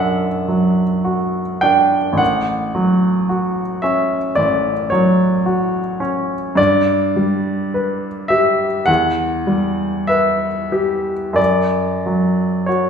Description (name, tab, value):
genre	classical, romantic nocturne for solo piano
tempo	45-56 BPM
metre	4/4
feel	rubato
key	unclear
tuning	A4 = 437 Hz
part	clear baby grand piano	solo	0.0-12.9 s	A1 to G5	-15 LUFS	equal	none
room	wet recital hall reverb, RT60 1.4 s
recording	recorded in a church or concert hall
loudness	-15 LUFS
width	side -7 dB against mid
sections	0.0-12.9 A section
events	none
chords	0.0 Bm; 2.2 F#m/A; 6.6 G; 8.9 Em; 11.4 F#5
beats	1.06 | 2.21 3.29 4.39 5.47 | 6.58 7.74 8.88 10.09 | 11.38 12.69